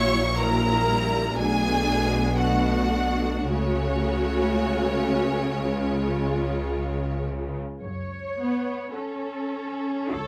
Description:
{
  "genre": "classical, slow romantic movement for string orchestra",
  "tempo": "49-62 BPM",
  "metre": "4/4",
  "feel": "rubato",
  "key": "F# minor",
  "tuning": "A4 = 440 Hz",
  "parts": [
    { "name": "bright symphonic violin section", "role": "melody", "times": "0.0-9.8 s", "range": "C#5 to C#6", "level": "-32 LUFS", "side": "equal", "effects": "none" },
    { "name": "warm studio violin section", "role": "second line", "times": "0.0-10.3 s", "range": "C#4 to C#5", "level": "-33 LUFS", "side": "equal", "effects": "none" },
    { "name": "warm symphonic viola section", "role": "accompaniment", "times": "0.0-9.9 s", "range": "F#3 to A4", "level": "-30 LUFS", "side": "equal", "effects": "none" },
    { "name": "rich symphonic double bass section", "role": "bass", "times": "0.0-10.3 s", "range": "A#1 to F#2", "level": "-31 LUFS", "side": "equal", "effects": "none" },
    { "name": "warm symphonic cello section", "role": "bass", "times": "0.0-10.3 s", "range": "A#2 to A4", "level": "-31 LUFS", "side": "equal", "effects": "none" }
  ],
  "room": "moderate large studio reverb, RT60 1.3 s",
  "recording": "none",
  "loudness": "-25 LUFS",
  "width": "mono",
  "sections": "0.0-7.8 A section; 7.8-10.3 B section",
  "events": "none",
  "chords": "0.0 F#7/A#; 1.4 Bm7; 3.5 F#m/C#; 5.6 C#; 7.8 F#m"
}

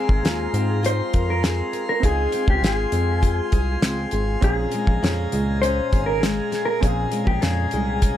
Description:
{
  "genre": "indie pop, bedroom pop",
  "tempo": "100 BPM",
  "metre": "4/4",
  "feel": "straight",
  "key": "unclear",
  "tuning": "A4 = 440 Hz",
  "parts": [
    { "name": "mellow electric guitar", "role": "melody", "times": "0.0-8.2 s", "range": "G4 to C5", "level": "-25 LUFS", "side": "left 1 dB", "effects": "lush chorus, analog delay" },
    { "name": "fingerpicked plugged-in steel-string acoustic guitar", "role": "accompaniment", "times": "0.0-8.2 s", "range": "Bb2 to Bb4", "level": "-28 LUFS", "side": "left 4 dB", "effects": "wide subtle chorus, warbly pitch drift" },
    { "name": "warm upright piano", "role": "accompaniment", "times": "0.0-8.2 s", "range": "C4 to F5", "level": "-34 LUFS", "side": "right 8 dB", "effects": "none" },
    { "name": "chamber organ, principal chorus", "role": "sustained chords", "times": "0.0-8.2 s", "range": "Ab3 to C6", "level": "-31 LUFS", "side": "equal", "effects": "none" },
    { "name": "chorused synth bass", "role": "bass", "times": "0.1-8.2 s", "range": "Ab1 to Ab2", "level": "-24 LUFS", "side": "equal", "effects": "none" },
    { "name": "damped 70s drum kit", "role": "drums", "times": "0.1-8.2 s", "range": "hi-hat, kick drum, snare drum", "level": "-21 LUFS", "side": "equal", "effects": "none" }
  ],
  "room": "little or no reverb",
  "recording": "none",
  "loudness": "-19 LUFS",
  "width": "side -11 dB against mid",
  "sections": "0.0-8.2 A section",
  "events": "none",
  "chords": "0.0 Ab69; 2.0 Dbmaj7; 4.4 Bbm7"
}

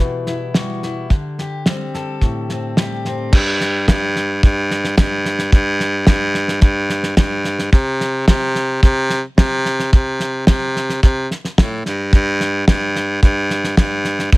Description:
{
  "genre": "indie folk with a building arrangement",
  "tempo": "109 BPM",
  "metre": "4/4",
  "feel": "straight",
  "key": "unclear",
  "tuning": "A4 = 444 Hz",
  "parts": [
    { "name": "fingerpicked steel-string acoustic guitar", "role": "accompaniment", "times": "0.0-5.5 s", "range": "A2 to B4", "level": "-24 LUFS", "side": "left 2 dB", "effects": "none" },
    { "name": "cloth-damped thuddy drum kit", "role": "drums", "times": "0.3-14.4 s", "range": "crash cymbal, kick drum, snare drum", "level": "-14 LUFS", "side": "equal", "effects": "none" },
    { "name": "clear baritone saxophone", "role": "bass", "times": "3.3-14.4 s", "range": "G2 to C3", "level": "-18 LUFS", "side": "equal", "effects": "none" }
  ],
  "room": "small room ambience",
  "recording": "none",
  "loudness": "-15 LUFS",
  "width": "side -23 dB against mid",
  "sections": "0.0-3.3 A section; 3.3-14.4 B section",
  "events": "none",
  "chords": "0.0 Emadd9; 1.1 D7sus4; 3.3 N.C.; 7.7 C5; 12.1 N.C."
}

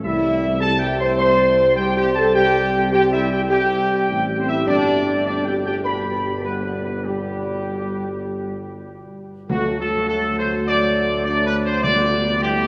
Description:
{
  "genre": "classical, ceremonial fanfare",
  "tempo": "102 BPM",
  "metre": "4/4",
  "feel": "straight",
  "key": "D mixolydian from 9.5 s",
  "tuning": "A4 = 437 Hz",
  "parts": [
    { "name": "mellow trumpet section", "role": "melody", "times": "0.0-12.7 s", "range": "F#4 to C6", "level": "-24 LUFS", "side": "equal", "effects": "none" },
    { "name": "mellow French horn section", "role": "sustained chords", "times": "0.0-12.7 s", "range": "G3 to C5", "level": "-23 LUFS", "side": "equal", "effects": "none" },
    { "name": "warm trombone section", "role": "sustained chords", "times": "0.0-12.7 s", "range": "B2 to B3", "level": "-30 LUFS", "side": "equal", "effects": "none" },
    { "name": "mellow tuba", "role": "bass", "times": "0.0-12.7 s", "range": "G1 to D2", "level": "-28 LUFS", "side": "equal", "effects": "none" },
    { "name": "timpani", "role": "percussion", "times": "9.5-12.7 s", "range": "D3", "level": "-32 LUFS", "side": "equal", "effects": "none" }
  ],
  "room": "wet cathedral reverb, RT60 5.5 s",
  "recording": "none",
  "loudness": "-20 LUFS",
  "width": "mono",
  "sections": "0.0-9.5 A section; 9.5-12.7 B section",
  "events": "none",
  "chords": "0.0 C; 4.7 G; 9.5 D; 11.8 G/D"
}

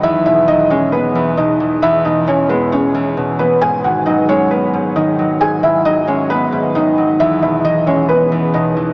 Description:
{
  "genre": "hip hop",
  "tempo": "134 BPM",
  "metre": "4/4",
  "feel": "half-time",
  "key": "G# minor",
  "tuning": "A4 = 440 Hz",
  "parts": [
    { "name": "felt-muted upright piano", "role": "melody", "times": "0.0-8.9 s", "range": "B3 to G#5", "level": "-13 LUFS", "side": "equal", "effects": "analog chorus, tape echo" },
    { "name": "concert harp", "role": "accompaniment", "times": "0.0-8.9 s", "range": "E2 to G#3", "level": "-17 LUFS", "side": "equal", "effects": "none" }
  ],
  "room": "wet huge ambient reverb, RT60 4.8 s",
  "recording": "dreamy mix soaked in reverb, small speaker sound",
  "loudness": "-11 LUFS",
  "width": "side -28 dB against mid",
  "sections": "0.0-3.6 A section; 3.6-8.9 B section",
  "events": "none",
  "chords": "0.0 E; 3.6 G#m7; 7.2 E"
}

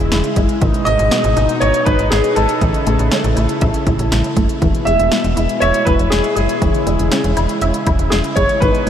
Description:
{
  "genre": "synth-pop",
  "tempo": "120 BPM",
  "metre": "4/4",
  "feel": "straight",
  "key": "unclear",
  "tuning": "A4 = 441 Hz",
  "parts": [
    { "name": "chorused pulse-width pad", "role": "sustained chords", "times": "0.0-8.9 s", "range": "B2 to E4", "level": "-21 LUFS", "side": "equal", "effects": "none" },
    { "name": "resonant blip pluck", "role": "arpeggios", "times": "0.0-8.9 s", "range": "D#3 to E5", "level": "-22 LUFS", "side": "left 1 dB", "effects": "chorus, phaser, ping-pong delay" },
    { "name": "slap-like FM bass", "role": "bass", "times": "0.0-8.9 s", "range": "E1 to A1", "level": "-18 LUFS", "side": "equal", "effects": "none" },
    { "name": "deep house drum kit", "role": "drums", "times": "0.1-8.9 s", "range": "hi-hat, kick drum, snare drum", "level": "-19 LUFS", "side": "equal", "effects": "none" },
    { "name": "clear baby grand piano", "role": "melody", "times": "0.9-8.9 s", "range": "G#4 to E5", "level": "-18 LUFS", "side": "equal", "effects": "lush chorus, ping-pong delay" }
  ],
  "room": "wet huge ambient reverb, RT60 7.7 s",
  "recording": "dreamy mix soaked in reverb",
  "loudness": "-13 LUFS",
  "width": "side -9 dB against mid",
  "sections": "0.0-8.9 A section",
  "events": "none",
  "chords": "0.0 C#m/E; 0.6 G#m; 2.6 A; 4.6 E; 6.6 C#m/E"
}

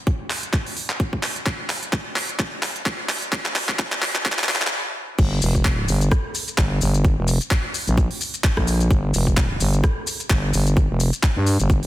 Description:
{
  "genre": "bass house",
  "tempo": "129 BPM",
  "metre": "4/4",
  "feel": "swing 56% on 16ths",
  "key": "unclear",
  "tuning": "A4 = 440 Hz",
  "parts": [
    { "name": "electronic kick drum", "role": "drums", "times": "0.1-11.8 s", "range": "none", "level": "-22 LUFS", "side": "equal", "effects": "none" },
    { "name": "garage drum kit", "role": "drums", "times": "0.1-11.9 s", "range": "crash cymbal, handclaps, hi-hat, rim click, shaker", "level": "-24 LUFS", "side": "equal", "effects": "soft clipping on snare" },
    { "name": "growling FM bass", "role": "bass", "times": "5.2-11.9 s", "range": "F1 to G2", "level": "-19 LUFS", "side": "equal", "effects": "overdrive, sidechain pumping" }
  ],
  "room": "light reverb",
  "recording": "dense, heavily limited modern master, high-pass filter",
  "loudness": "-19 LUFS",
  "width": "side -15 dB against mid",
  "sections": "0.0-5.2 A section; 5.2-11.9 B section",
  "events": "build-up 0.0-5.2; drum fill 0.0-4.7; filter sweep 0.0-5.2; stop 4.7-5.2; drop 5.2-11.9",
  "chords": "none"
}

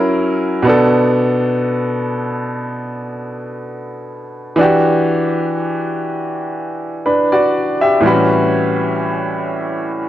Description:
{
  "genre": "R&B",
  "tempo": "61 BPM",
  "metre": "4/4",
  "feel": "swing 54% on 16ths",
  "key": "E minor",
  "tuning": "A4 = 440 Hz",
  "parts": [
    { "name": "clear baby grand piano", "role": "solo", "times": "0.0-10.1 s", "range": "A2 to E5", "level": "-14 LUFS", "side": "equal", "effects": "none" }
  ],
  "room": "light reverb",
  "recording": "worn, warbling old tape, cassette tape, warbly pitch drift",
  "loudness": "-14 LUFS",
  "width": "side -13 dB against mid",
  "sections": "0.0-10.1 A section",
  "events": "none",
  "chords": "0.0 F#7; 0.7 Bm7; 4.6 Em9; 8.0 A13"
}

